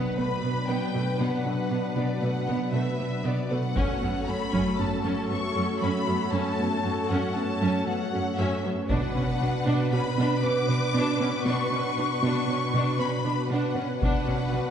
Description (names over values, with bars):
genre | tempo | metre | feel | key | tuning
cinematic, hybrid orchestral and electronic film score | 117 BPM | 5/4 | straight | unclear | A4 = 443 Hz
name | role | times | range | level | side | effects
rich studio violin section | melody | 0.0-14.7 s | D5 to D6 | -32 LUFS | left 4 dB | none
rich symphonic viola section | accompaniment | 0.0-14.7 s | A3 to B4 | -31 LUFS | right 2 dB | none
brassy analog pad | sustained chords | 0.0-14.7 s | F#3 to C#5 | -31 LUFS | left 1 dB | chorus
harp-like synth pluck | arpeggios | 0.0-14.7 s | F#3 to B4 | -33 LUFS | right 2 dB | chorus
impact | sound effects | 0.0-1.2 s | none | -50 LUFS | equal | none
rich symphonic cello section | bass | 0.2-14.6 s | F#2 to B2 | -29 LUFS | right 1 dB | none
taiko ensemble | drums | 3.8-4.8, 8.9-9.9, 14.0-14.7 s | none | -32 LUFS | left 1 dB | none
room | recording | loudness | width
wet scoring stage reverb, RT60 1.8 s | heard from further back in the room, nothing above 10.5 kHz | -24 LUFS | side -8 dB against mid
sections
0.0-14.7 A section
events
impact 0.0-1.2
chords
0.0 Bm; 3.8 F#m; 8.9 Bm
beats
0.18 0.69 | 1.20 1.72 2.23 2.74 3.25 | 3.77 4.28 4.79 5.30 5.82 | 6.33 6.84 7.36 7.87 8.38 | 8.89 9.41 9.92 10.43 10.95 | 11.46 11.97 12.48 13.00 13.51 | 14.02 14.54